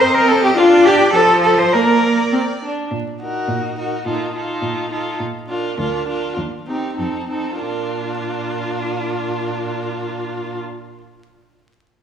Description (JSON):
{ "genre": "quick classical-period movement for string quartet", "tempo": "94-106 BPM", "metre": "2/4", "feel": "straight", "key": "Bb major", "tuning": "A4 = 439 Hz", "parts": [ { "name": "rich violin", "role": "melody", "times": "0.0-10.6 s", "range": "G4 to Eb5", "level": "-27 LUFS", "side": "equal", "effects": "none" }, { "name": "warm violin", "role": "second line", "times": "0.0-10.6 s", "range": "Eb4 to C5", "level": "-22 LUFS", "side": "left 2 dB", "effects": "none" }, { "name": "rich viola", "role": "accompaniment", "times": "0.0-10.6 s", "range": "F3 to Eb4", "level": "-22 LUFS", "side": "right 2 dB", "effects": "none" }, { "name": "clear cello", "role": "bass", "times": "0.0-10.6 s", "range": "D2 to C5", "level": "-18 LUFS", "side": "equal", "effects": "none" } ], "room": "wet scoring stage reverb, RT60 1.8 s", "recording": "vinyl crackle, studio reverb", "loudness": "-16 LUFS", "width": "side -8 dB against mid", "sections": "0.0-2.9 A section; 2.9-7.6 B section; 7.6-10.1 C section", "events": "slowing down 4.6-7.6", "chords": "0.0 Cm; 0.6 Dmadd11; 1.1 F; 1.7 Bb; 2.9 Ebm/Bb; 5.2 Bb; 5.8 Bb/D; 6.4 Cm/Eb; 7.0 F7; 7.6 Bb" }